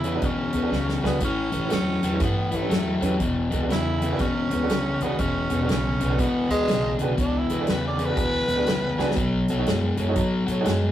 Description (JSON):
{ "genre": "electric blues shuffle", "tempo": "121 BPM", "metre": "4/4", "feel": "swing 63% on 8ths", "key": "E mixolydian", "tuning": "A4 = 441 Hz", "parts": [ { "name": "growling tenor saxophone", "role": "melody", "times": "0.0-9.5 s", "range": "G#3 to D5", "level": "-28 LUFS", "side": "right 1 dB", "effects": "none" }, { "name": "overdriven semi-hollow guitar", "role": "riff", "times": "0.0-10.9 s", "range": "E2 to G#3", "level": "-25 LUFS", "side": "left 2 dB", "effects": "none" }, { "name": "upright bass", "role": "bass", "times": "0.0-10.9 s", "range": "E1 to A2", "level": "-30 LUFS", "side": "right 1 dB", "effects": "none" }, { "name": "natural country drum kit", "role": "drums", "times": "0.0-10.8 s", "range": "hi-hat, kick drum, snare drum", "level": "-29 LUFS", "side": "equal", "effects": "none" }, { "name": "clear upright piano", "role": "accompaniment", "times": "0.1-10.7 s", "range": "C#4 to C#5", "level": "-30 LUFS", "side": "right 4 dB", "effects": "none" } ], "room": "wet studio reverb, RT60 0.6 s", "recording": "rough rehearsal-room recording, tube saturation", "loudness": "-21 LUFS", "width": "side -12 dB against mid", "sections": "0.0-10.9 A section", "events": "tenor saxophone solo 0.0-10.9; drum fill 0.7-1.2, 8.9", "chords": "0.0 E9; 1.2 A9; 3.2 E9; 9.2 B9", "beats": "0.23 0.73 | 1.23 1.72 2.22 2.72 | 3.21 3.71 4.21 4.71 | 5.20 5.70 6.20 6.69 | 7.19 7.69 8.18 8.68 | 9.18 9.68 10.17 10.67" }